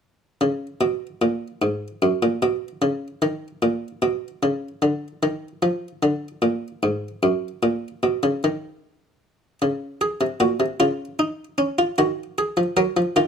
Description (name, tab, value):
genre	classical, baroque-style 3-part fugue for harpsichord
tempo	50 BPM (dotted quarters)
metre	12/8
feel	straight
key	unclear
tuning	A4 = 440 Hz
part	buff-stop harpsichord	solo	0.4-13.3 s	Gb2 to Bb4	-20 LUFS	equal	none
room	light reverb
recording	none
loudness	-21 LUFS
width	side -7 dB against mid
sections	0.0-13.3 A section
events	none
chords	0.0 N.C.; 9.6 Bbm